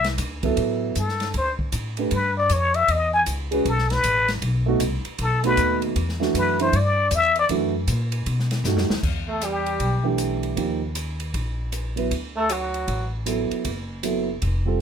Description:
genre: jazz, small-group swing and bop.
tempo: 156 BPM.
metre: 4/4.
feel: swing 64% on 8ths.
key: E minor.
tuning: A4 = 440 Hz.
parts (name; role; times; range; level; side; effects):
trumpet with plunger mute; melody; 0.0-13.1 s; F#4 to G#5; -21 LUFS; left 3 dB; none.
upright bass; bass; 0.0-14.8 s; F1 to B2; -25 LUFS; left 1 dB; none.
open jazz drum kit; drums; 0.0-14.5 s; crash cymbal, hi-hat, kick drum, ride cymbal, snare drum; -31 LUFS; equal; none.
dark concert grand piano; accompaniment; 0.4-14.8 s; E3 to B4; -24 LUFS; right 5 dB; none.
breathy alto saxophone; second line; 9.3-13.1 s; F#3 to A3; -28 LUFS; right 5 dB; none.
room: light reverb.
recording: none.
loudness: -20 LUFS.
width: side -8 dB against mid.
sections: 0.0-9.0 A section; 9.0-14.8 B section.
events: muted trumpet solo 0.0-9.0; drum fill 8.6-9.0.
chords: 0.0 C69; 1.3 D5; 2.1 G7#11; 2.9 A; 4.4 B7; 6.0 Em7; 7.5 F#7alt; 8.3 B7b13; 9.0 Em7; 10.6 D#add9; 12.1 D69; 13.6 F#m7.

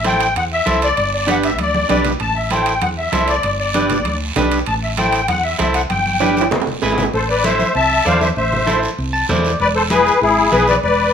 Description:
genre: latin, cumbia.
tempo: 195 BPM.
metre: 4/4.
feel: straight.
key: A dorian, A harmonic minor from 7.1 s.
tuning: A4 = 440 Hz.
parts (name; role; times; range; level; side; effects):
musette accordion; melody; 0.0-11.1 s; E4 to A5; -16 LUFS; left 2 dB; none.
electric guitar at the edge of break-up; accompaniment; 0.0-10.7 s; D4 to A5; -20 LUFS; right 2 dB; none.
hollow-body short-scale fingered electric bass; bass; 0.0-11.1 s; E1 to E2; -23 LUFS; equal; none.
guiro; percussion; 0.0-11.1 s; none; -29 LUFS; right 6 dB; none.
timbales; percussion; 0.0-7.1 s; none; -25 LUFS; right 8 dB; none.
congas; percussion; 0.1-11.0 s; none; -25 LUFS; left 1 dB; none.
room: moderate large studio reverb, RT60 0.9 s.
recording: minimal, uncompressed stereo recording.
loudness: -14 LUFS.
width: side -7 dB against mid.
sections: 0.0-7.1 A section; 7.1-11.1 B section.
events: drum fill 1.7-2.2, 5.9-7.1; clean electric guitar fill 9.0-9.6.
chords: 0.0 Am; 1.0 G; 2.2 Am; 3.4 G; 4.7 Am; 5.9 G; 6.5 E; 7.1 Am; 9.6 E7.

